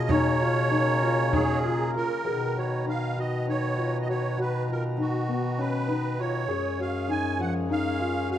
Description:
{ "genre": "contemporary instrumental, chamber music in an uneven meter", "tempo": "198 BPM (eighths)", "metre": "7/8", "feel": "straight", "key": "B lydian", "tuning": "A4 = 440 Hz", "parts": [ { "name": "musette accordion", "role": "melody", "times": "0.0-8.4 s", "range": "F#4 to G#5", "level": "-29 LUFS", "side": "right 4 dB", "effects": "none" }, { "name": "pedal harmonium", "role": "sustained chords", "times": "0.0-8.4 s", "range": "C#3 to A#5", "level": "-34 LUFS", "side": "equal", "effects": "none" }, { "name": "felt-muted upright piano", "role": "arpeggios", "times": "0.0-8.4 s", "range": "E#3 to G#4", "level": "-30 LUFS", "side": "left 4 dB", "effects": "none" }, { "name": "warm bass clarinet", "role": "bass", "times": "0.0-8.4 s", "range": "F#2 to B2", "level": "-29 LUFS", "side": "left 1 dB", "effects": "none" }, { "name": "frame drum", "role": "percussion", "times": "0.1-1.6 s", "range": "none", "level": "-30 LUFS", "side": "right 2 dB", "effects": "none" } ], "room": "light reverb", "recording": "dark, warm production", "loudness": "-24 LUFS", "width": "side -11 dB against mid", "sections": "0.0-2.3 A section; 2.3-8.4 B section", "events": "none", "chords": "0.0 A#m7/B; 2.3 Bmaj7; 6.5 F#sus2" }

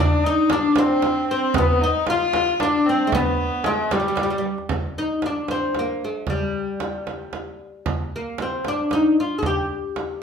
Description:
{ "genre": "Persian modal ensemble", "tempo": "76 BPM (dotted quarters)", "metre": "6/8", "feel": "straight", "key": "G dastgah shur from 4.7 s", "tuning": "A4 = 441 Hz", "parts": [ { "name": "oud", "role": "melody", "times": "0.0-10.2 s", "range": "G3 to Ab4+45c", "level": "-22 LUFS", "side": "left 1 dB", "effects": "none" }, { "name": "bright kamancheh", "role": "second line", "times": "0.0-4.5 s", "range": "G3 to F4", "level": "-22 LUFS", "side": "left 2 dB", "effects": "none" }, { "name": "frame drum", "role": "percussion", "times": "0.5-10.1 s", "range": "none", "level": "-26 LUFS", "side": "right 3 dB", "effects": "none" }, { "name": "tombak", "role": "percussion", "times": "0.5-4.7 s", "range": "none", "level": "-27 LUFS", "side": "right 1 dB", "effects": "none" } ], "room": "wet large studio reverb, RT60 0.9 s", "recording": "band playing live in one room", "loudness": "-19 LUFS", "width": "side -7 dB against mid", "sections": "0.0-4.7 A section; 4.7-10.2 B section", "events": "drum fill 4.2-4.7", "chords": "none" }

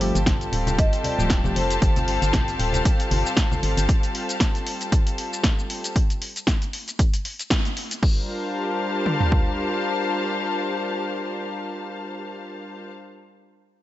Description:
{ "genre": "deep house", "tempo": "116 BPM", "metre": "4/4", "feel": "swing 56% on 16ths", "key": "G minor", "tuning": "A4 = 443 Hz", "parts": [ { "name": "marimba with soft mallets", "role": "melody", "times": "0.0-2.6 s", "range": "C5 to Eb5", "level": "-32 LUFS", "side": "right 1 dB", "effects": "tape echo" }, { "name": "warm analog pad", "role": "sustained chords", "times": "0.0-12.8 s", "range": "G3 to Bb4", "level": "-30 LUFS", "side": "right 1 dB", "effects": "chorus, sidechain pumping" }, { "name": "bell-like tine electric piano", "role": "stabs", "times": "0.0-1.6 s", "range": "F3 to G4", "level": "-29 LUFS", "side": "left 1 dB", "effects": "sidechain pumping, tape echo" }, { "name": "organ-like FM bass", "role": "bass", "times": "0.0-3.9 s", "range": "D1 to G1", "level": "-25 LUFS", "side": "equal", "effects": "sidechain pumping" }, { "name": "punchy analog drum machine", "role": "drums", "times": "0.0-8.1 s", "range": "crash cymbal, hi-hat, shaker, snare drum", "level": "-28 LUFS", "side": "equal", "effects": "none" }, { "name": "rich studio string section", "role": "texture", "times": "0.0-12.9 s", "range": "G4 to A5", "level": "-28 LUFS", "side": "left 5 dB", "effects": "sidechain pumping" }, { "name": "warm chamber violin section", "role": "texture", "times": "0.0-6.0 s", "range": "A4 to A5", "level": "-33 LUFS", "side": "equal", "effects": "sidechain pumping" }, { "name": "punchy analog drum machine", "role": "drums", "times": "0.3-9.5 s", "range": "kick drum, toms", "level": "-21 LUFS", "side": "equal", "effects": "none" }, { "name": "congas", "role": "percussion", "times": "0.3-3.6 s", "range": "none", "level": "-31 LUFS", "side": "left 2 dB", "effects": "none" } ], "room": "light reverb, small room ambience", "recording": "nothing above 7.9 kHz", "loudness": "-21 LUFS", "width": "side -14 dB against mid", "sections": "0.0-8.0 A section; 8.0-12.2 B section", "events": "drop 0.0-8.0; band accent 7.5", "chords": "0.0 Fadd9; 8.0 Gm7" }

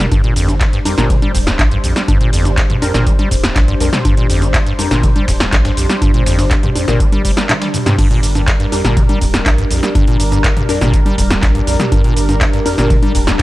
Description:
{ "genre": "acid house", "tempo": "122 BPM", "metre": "4/4", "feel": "straight", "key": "G minor", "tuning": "A4 = 440 Hz", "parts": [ { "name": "lush unison pad", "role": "sustained chords", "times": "0.0-13.4 s", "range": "G3 to C5", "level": "-21 LUFS", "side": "equal", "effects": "chorus, phaser, sidechain pumping" }, { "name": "acid bass, square", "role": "riff", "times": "0.0-13.4 s", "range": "F2 to Bb3", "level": "-18 LUFS", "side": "equal", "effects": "tube saturation, sidechain pumping" }, { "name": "saturated sub bass", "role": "bass", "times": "0.0-13.4 s", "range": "D1 to Bb1", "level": "-18 LUFS", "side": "equal", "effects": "sidechain pumping" }, { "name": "electro analog drum machine", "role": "drums", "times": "0.0-13.4 s", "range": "cabasa, congas, crash cymbal, handclaps, hi-hat, snare drum, toms", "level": "-18 LUFS", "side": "equal", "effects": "none" }, { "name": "dusty soul sampler-style drum kit", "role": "drums", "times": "0.1-13.4 s", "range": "hi-hat, snare drum", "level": "-30 LUFS", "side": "equal", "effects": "none" }, { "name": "electronic kick drum", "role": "drums", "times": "0.1-13.4 s", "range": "none", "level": "-15 LUFS", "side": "equal", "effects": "overdrive" }, { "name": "filtered dub chord stab", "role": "stabs", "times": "0.9-12.9 s", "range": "G3 to Bb4", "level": "-23 LUFS", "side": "left 2 dB", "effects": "phaser, lush chorus, tape echo" } ], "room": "little or no reverb", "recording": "none", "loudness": "-11 LUFS", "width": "side -17 dB against mid", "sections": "0.0-13.4 A section", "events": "kick drops out 7.5-8.0; drum fill 7.5-8.0", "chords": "0.0 Gm" }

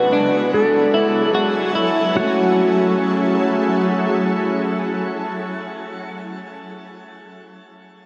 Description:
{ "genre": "dream pop", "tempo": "74 BPM", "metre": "4/4", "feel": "straight", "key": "F# minor", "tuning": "A4 = 440 Hz", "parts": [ { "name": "clean lap steel guitar", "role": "melody", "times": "0.0-6.2 s", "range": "F#4 to B4", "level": "-23 LUFS", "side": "equal", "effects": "digital delay" }, { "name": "shimmering ambient pad", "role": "sustained chords", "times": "0.0-6.2 s", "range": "F#3 to G#5", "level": "-25 LUFS", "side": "equal", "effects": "chorus, built-in reverb" }, { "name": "electric guitar at the edge of break-up", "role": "arpeggios", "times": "0.0-6.6 s", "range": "F#3 to F#4", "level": "-24 LUFS", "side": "equal", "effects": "analog chorus, digital delay" } ], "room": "wet shimmer reverb, RT60 5.6 s", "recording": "none", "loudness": "-18 LUFS", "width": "mono", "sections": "0.0-2.2 A section; 2.2-5.4 B section", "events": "none", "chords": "0.0 G#m7b5; 0.5 F#m7" }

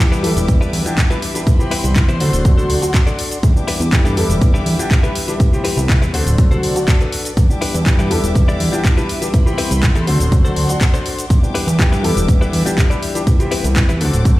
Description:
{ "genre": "filtered disco house", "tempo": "122 BPM", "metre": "4/4", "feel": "straight", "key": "E minor", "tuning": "A4 = 442 Hz", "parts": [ { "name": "warm grand piano", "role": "accompaniment", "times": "0.0-14.4 s", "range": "D3 to B4", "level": "-21 LUFS", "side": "left 1 dB", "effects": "phaser, vintage 12-bit sampler grit, sidechain pumping" }, { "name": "dark studio string section", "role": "sustained chords", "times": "0.0-14.4 s", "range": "F#4 to D6", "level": "-28 LUFS", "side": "left 1 dB", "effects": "sidechain pumping" }, { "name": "direct-recorded clean electric guitar", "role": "riff", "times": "0.0-14.3 s", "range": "C4 to A5", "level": "-25 LUFS", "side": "left 3 dB", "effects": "vintage 12-bit sampler grit, sidechain pumping" }, { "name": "fat analog bass", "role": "bass", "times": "0.0-14.3 s", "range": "D1 to G2", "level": "-17 LUFS", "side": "equal", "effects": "sidechain pumping" }, { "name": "house drum kit", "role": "drums", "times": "0.0-14.4 s", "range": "handclaps, hi-hat, shaker", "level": "-23 LUFS", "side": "equal", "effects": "overdrive, sidechain pumping on hats, sidechain pumping on cymbals, sidechain pumping on perc" }, { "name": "electronic kick drum", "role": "drums", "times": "0.5-14.4 s", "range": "none", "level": "-13 LUFS", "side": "equal", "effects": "overdrive" } ], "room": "little or no reverb", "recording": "played on a big sound system in a bare room, large studio reverb", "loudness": "-13 LUFS", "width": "side -17 dB against mid", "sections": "0.0-14.4 A section", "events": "clean electric guitar fill 6.6-7.4", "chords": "0.0 Em7; 1.5 Cmaj7; 2.2 D7; 3.4 Em7; 5.4 Cmaj7; 6.1 D7; 7.4 Em7; 9.3 Cmaj7; 10.1 D7; 11.3 Em7; 13.3 Cmaj7" }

